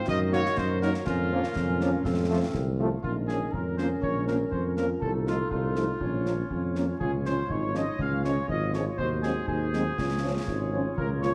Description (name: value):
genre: military-style march for wind band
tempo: 121 BPM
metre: 2/4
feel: straight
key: Bb minor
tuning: A4 = 440 Hz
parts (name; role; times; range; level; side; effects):
- mellow trumpet section; melody; 0.0-11.3 s; F4 to F5; -36 LUFS; equal; delay
- clear euphonium; second line; 0.0-11.3 s; Db4 to F4; -40 LUFS; equal; none
- dark woodwind section; second line; 0.0-11.3 s; C4 to Db5; -36 LUFS; equal; none
- mellow tuba; bass; 0.1-11.3 s; Ab1 to Gb2; -32 LUFS; equal; none
- concert snare drum and concert bass drum; drums; 0.1-11.3 s; none; -38 LUFS; equal; none
- mellow French horn section; accompaniment; 0.3-11.3 s; F3 to Eb4; -36 LUFS; equal; none
- bright trombone section; sustained chords; 0.3-2.9 s; F3 to Bb3; -38 LUFS; equal; none
room: moderate plate reverb, RT60 1.4 s, small room ambience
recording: dreamy mix soaked in reverb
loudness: -28 LUFS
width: mono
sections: 0.0-3.0 A section; 3.0-11.3 B section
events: none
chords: 0.1 Ebm/Gb; 1.1 Bbm/F; 2.0 F; 3.0 Bbm; 5.0 F7/C; 6.0 Bbm; 7.0 Db; 9.0 Ab7/Eb; 10.0 Db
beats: | 0.07 0.57 | 1.06 1.55 | 2.05 2.54 | 3.04 3.53 | 4.03 4.52 | 5.02 5.51 | 6.01 6.51 | 7.00 7.50 | 7.99 8.49 | 8.99 9.48 | 9.98 10.48 | 10.97